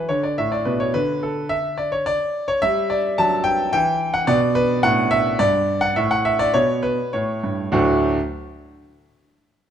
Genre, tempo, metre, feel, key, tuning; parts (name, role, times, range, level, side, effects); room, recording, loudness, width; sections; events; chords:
classical-period piano sonatina; 99-110 BPM; 3/4; straight; D major; A4 = 440 Hz
warm concert grand piano; solo; 0.0-8.2 s; D2 to A5; -18 LUFS; equal
moderate recital hall reverb, RT60 1.6 s; close, detailed microphones; -18 LUFS; side -9 dB against mid
0.0-7.7 A section; 7.7-9.5 B section
0.4 Aadd9; 1.0 N.C.; 2.6 Em11; 3.7 N.C.; 4.3 D69; 5.4 N.C.; 6.0 A69; 7.1 A7; 7.7 D